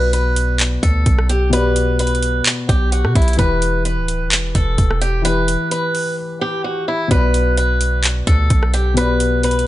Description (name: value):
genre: hip hop, trap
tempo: 129 BPM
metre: 4/4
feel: half-time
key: B minor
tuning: A4 = 440 Hz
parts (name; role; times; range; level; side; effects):
- picked swing-style acoustic guitar; melody; 0.0-9.7 s; E4 to B4; -20 LUFS; equal; low-pass filter
- dark concert grand piano; accompaniment; 0.0-9.7 s; B2 to D5; -23 LUFS; left 4 dB; low-pass filter
- warm 808-style bass; bass; 0.0-9.7 s; D1 to B2; -17 LUFS; equal; none
- trap drum kit; drums; 0.1-9.7 s; handclaps, hi-hat, kick drum, rim click; -18 LUFS; equal; none
room: light reverb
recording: nothing above 10.5 kHz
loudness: -14 LUFS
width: side -15 dB against mid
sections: 0.0-9.7 A section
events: break 6.2-7.1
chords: 0.0 Bm; 3.4 Em; 7.1 Bm